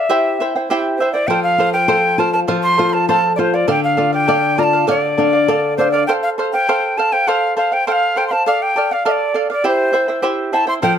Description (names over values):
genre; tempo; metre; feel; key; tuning
andean folk; 101 BPM; 2/4; straight; unclear; A4 = 440 Hz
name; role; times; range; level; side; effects
reedy quena; melody; 0.0-11.0 s; C5 to C6; -16 LUFS; equal; plate reverb
charango; accompaniment; 0.0-11.0 s; E4 to G5; -18 LUFS; right 2 dB; none
flamenco guitar; accompaniment; 1.3-6.1, 10.8-11.0 s; D3 to D5; -19 LUFS; left 6 dB; none
room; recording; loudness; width
moderate studio reverb, RT60 0.6 s; none; -14 LUFS; side -8 dB against mid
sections
0.0-6.1 A section; 6.1-11.0 A section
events
none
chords
0.1 C; 1.3 F; 3.7 Dm; 6.1 F; 8.5 Dm; 9.6 C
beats
| 0.09 0.69 | 1.29 1.89 | 2.49 3.09 | 3.68 4.28 | 4.88 5.47 | 6.07 6.67 | 7.26 7.86 | 8.45 9.05 | 9.64 10.24 | 10.83